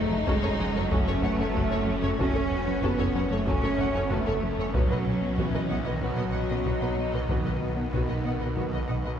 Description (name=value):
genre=cinematic, hybrid orchestral and electronic film score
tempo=94 BPM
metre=4/4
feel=straight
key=unclear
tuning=A4 = 440 Hz
part: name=rich symphonic violin section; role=second line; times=0.0-9.2 s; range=A3 to D#4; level=-36 LUFS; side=left 2 dB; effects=none
part: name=evolving wavetable pad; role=sustained chords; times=0.0-9.2 s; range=F#3 to D#5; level=-36 LUFS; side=equal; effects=chorus, built-in reverb, phaser
part: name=warm French horn section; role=sustained chords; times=0.0-9.2 s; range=D#3 to C#4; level=-34 LUFS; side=left 2 dB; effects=none
part: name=rubbery square bass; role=riff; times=0.0-9.1 s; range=F#2 to B3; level=-33 LUFS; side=left 2 dB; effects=none
part: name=rich symphonic cello section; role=bass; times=0.0-9.2 s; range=D#3 to C#4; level=-31 LUFS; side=right 3 dB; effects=none
part: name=snarling distorted saw bass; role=bass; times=0.0-9.2 s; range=F#1 to B1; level=-35 LUFS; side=equal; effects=distortion
part: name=warm symphonic violin section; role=melody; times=0.3-9.1 s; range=A4 to F#5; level=-39 LUFS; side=left 4 dB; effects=none
part: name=warm symphonic viola section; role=accompaniment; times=0.3-9.1 s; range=B3 to D#5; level=-35 LUFS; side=right 1 dB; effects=none
part: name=rich symphonic double bass section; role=bass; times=0.3-9.1 s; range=F#1 to B1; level=-36 LUFS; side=right 3 dB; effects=none
part: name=taiko ensemble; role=drums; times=0.3-9.2 s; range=none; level=-33 LUFS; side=equal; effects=none
part: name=clear trombone section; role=sustained chords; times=0.9-8.8 s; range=F#3 to C#4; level=-40 LUFS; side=right 2 dB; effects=none
room=wet concert hall reverb, RT60 2.2 s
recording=heard from further back in the room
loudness=-24 LUFS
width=side -9 dB against mid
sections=0.0-9.2 A section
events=none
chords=0.0 F#m; 4.7 B